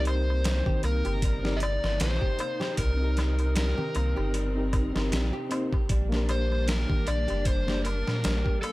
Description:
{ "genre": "trip hop", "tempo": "77 BPM", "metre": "4/4", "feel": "swing 56% on 16ths", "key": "unclear", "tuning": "A4 = 440 Hz", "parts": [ { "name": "overdriven slide guitar", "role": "melody", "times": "0.0-8.7 s", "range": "A4 to Eb5", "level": "-32 LUFS", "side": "left 2 dB", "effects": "tape echo" }, { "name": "reed electric piano", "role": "accompaniment", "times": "0.0-7.9 s", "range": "Bb3 to D5", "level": "-34 LUFS", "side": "left 1 dB", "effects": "tremolo, tape echo" }, { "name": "warm symphonic string section", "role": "sustained chords", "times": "0.0-8.7 s", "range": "C3 to Eb4", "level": "-38 LUFS", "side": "equal", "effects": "vintage 12-bit sampler grit" }, { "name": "flamenco guitar", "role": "arpeggios", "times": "0.0-8.7 s", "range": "G3 to G4", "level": "-39 LUFS", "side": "right 2 dB", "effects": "tape echo" }, { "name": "soft dub sub bass", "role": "bass", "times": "0.0-8.4 s", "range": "F#1 to Bb2", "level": "-27 LUFS", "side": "equal", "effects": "none" }, { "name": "trip hop sampler-style drum kit", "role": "drums", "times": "0.1-8.7 s", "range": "hi-hat, kick drum, snare drum", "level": "-29 LUFS", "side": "equal", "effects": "none" }, { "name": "darbuka", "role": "percussion", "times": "0.1-8.7 s", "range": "none", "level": "-38 LUFS", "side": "left 1 dB", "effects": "none" } ], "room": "little or no reverb", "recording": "none", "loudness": "-24 LUFS", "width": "side -19 dB against mid", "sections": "0.0-8.7 A section", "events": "none", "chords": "0.0 Cm7; 5.9 Gm" }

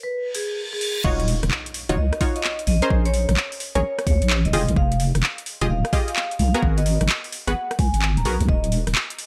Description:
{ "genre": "UK garage, two-step garage", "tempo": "129 BPM", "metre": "4/4", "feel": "swing 65% on 16ths", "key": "Eb minor", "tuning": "A4 = 440 Hz", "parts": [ { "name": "vibraphone with medium mallets", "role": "melody", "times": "0.0-8.7 s", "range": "Ab4 to Bb5", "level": "-31 LUFS", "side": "equal", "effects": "tape echo" }, { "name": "warm analog pad", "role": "sustained chords", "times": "0.0-1.1 s", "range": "none", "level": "barely audible", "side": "none", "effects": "none" }, { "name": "reverse cymbal and impact", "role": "sound effects", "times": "0.3-2.9 s", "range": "none", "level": "-34 LUFS", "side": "equal", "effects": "none" }, { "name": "garage drum kit", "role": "drums", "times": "0.3-9.3 s", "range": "crash cymbal, handclaps, hi-hat, rim click", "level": "-29 LUFS", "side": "equal", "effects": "overdrive" }, { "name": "punchy chord stab", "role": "stabs", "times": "1.0-8.3 s", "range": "Cb4 to Eb5", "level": "-30 LUFS", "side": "equal", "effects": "chorus, dub echo" }, { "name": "deep soft wobble bass", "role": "bass", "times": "1.0-8.9 s", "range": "Eb1 to Eb2", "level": "-23 LUFS", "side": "equal", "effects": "chorus" }, { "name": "electronic kick drum", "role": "drums", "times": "1.0-8.6 s", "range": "none", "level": "-24 LUFS", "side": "equal", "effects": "overdrive" } ], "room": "digital ambience", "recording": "none", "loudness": "-22 LUFS", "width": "mono", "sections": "0.0-1.0 A section; 1.0-9.3 B section", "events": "reverse cymbal 0.3-1.0; drop 1.0-9.3; impact 1.0-2.9", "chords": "0.0 N.C.; 1.0 Ebm9; 2.9 Bbm9; 4.5 Fm9; 6.6 Abm9; 8.5 N.C." }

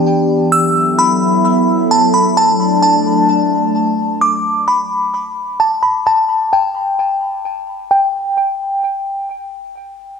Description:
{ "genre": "hip hop", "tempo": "130 BPM", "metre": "4/4", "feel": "half-time", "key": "unclear", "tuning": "A4 = 442 Hz", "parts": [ { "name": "glassy synth bell", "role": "melody", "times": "0.0-9.3 s", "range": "G5 to E6", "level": "-14 LUFS", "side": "equal", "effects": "chorus, low-pass filter, tape echo" }, { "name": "warbly tape-like pad", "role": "sustained chords", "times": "0.0-4.2 s", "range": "E3 to E5", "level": "-14 LUFS", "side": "equal", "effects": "chorus, built-in reverb, low-pass filter" } ], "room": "wet spring reverb, RT60 2.0 s", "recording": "echo-heavy mix", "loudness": "-12 LUFS", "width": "side -6 dB against mid", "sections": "0.5-7.9 A section; 7.9-10.2 B section", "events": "filter sweep 0.5-7.9", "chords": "0.0 Em7; 0.5 B7sus4; 2.4 D; 4.2 N.C." }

